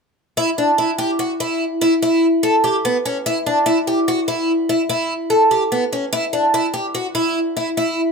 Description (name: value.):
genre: progressive instrumental, progressive.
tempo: 146 BPM.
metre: 7/4.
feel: straight.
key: E dorian.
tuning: A4 = 440 Hz.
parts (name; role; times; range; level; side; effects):
picked twelve-string acoustic guitar; solo; 0.4-8.0 s; B3 to A4; -16 LUFS; equal; none.
room: light reverb.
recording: none.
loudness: -16 LUFS.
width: side -4 dB against mid.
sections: 0.4-8.1 A section.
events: none.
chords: none.